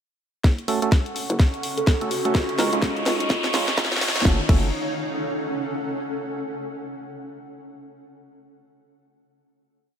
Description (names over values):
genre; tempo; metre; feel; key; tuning
bass house; 126 BPM; 4/4; swing 59% on 16ths; unclear; A4 = 440 Hz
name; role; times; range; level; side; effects
dark analog pad; sustained chords; 0.4-4.5 s; C#4 to C#6; -32 LUFS; right 1 dB; lush chorus, sidechain pumping
hollow knocking FM bass; bass; 0.4-4.7 s; E1 to C#2; -27 LUFS; equal; overdrive, sidechain pumping, high-pass filter
electronic kick drum; drums; 0.4-4.6 s; none; -18 LUFS; equal; none
garage drum kit; drums; 0.4-4.6 s; crash cymbal, hi-hat, snare drum; -27 LUFS; equal; none
riser; sound effects; 1.5-4.3 s; none; -30 LUFS; left 2 dB; none
granular cloud pad; texture; 1.2-6.1 s; C#4 to F#5; -30 LUFS; equal; built-in reverb, sidechain pumping
percussive organ stab; stabs; 0.7-4.7 s; G#3 to A#4; -28 LUFS; right 5 dB; chorus, sidechain pumping, ping-pong delay
kalimba; melody; 1.8-4.0 s; E#4 to A4; -30 LUFS; equal; ping-pong delay
room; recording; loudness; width
light reverb; high-pass filter; -20 LUFS; side -8 dB against mid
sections
0.4-4.3 build; 4.3-6.2 final chord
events
build-up 0.4-4.3; drum fill 0.4-4.3; filter sweep 0.4-4.3; riser 1.5-4.3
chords
0.4 F#m; 2.3 C#add9; 4.3 F#m